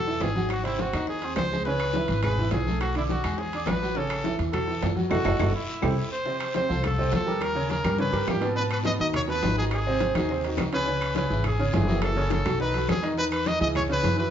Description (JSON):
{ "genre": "latin, salsa", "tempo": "208 BPM", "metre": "4/4", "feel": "straight", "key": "unclear", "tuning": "A4 = 442 Hz", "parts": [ { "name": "bright trumpet", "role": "melody", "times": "0.0-14.3 s", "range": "E4 to D#5", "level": "-29 LUFS", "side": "left 1 dB", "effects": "none" }, { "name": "warm upright piano", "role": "accompaniment", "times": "0.0-14.3 s", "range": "B2 to D6", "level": "-28 LUFS", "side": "right 2 dB", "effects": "none" }, { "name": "upright bass", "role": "bass", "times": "0.0-14.3 s", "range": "F#1 to G#2", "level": "-29 LUFS", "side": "equal", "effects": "none" }, { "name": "bongos", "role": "percussion", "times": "0.1-14.2 s", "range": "none", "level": "-37 LUFS", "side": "left 4 dB", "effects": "none" }, { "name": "congas", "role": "percussion", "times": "0.1-14.2 s", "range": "none", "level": "-33 LUFS", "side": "left 2 dB", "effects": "none" }, { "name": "guiro", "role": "percussion", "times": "0.2-14.3 s", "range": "none", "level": "-43 LUFS", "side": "left 2 dB", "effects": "none" }, { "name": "timbales", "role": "percussion", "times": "0.2-14.2 s", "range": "none", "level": "-36 LUFS", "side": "right 5 dB", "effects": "none" }, { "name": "claves", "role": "percussion", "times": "0.5-13.9 s", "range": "none", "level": "-41 LUFS", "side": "left 3 dB", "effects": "none" } ], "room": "moderate large studio reverb, RT60 1.1 s", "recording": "band playing live in one room, nothing above 7.6 kHz", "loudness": "-23 LUFS", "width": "side -9 dB against mid", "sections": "0.0-6.3 A section; 6.3-14.3 B section", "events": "band accent 5.1-6.3; drum fill 5.7-6.3", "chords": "0.0 A5; 0.5 G#7; 1.7 C#m7; 2.8 Bm7; 3.4 E7; 4.0 A6; 5.1 F#m7; 5.7 C; 6.3 F; 7.4 D#7b13; 8.6 G#m7; 9.7 G#7; 10.9 C#m7; 12.0 F#m7; 12.6 B7; 13.2 Emaj7; 13.7 C#m7", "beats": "0.21 | 0.50 0.79 1.08 1.37 | 1.66 1.94 2.23 2.52 | 2.81 3.10 3.38 3.67 | 3.96 4.25 4.54 4.83 | 5.11 5.40 5.69 5.98 | 6.27 6.55 6.84 7.13 | 7.42 7.71 7.99 8.28 | 8.57 8.86 9.14 9.43 | 9.72 10.01 10.30 10.58 | 10.87 11.16 11.45 11.73 | 12.02 12.31 12.60 12.88 | 13.17 13.46 13.75 14.03" }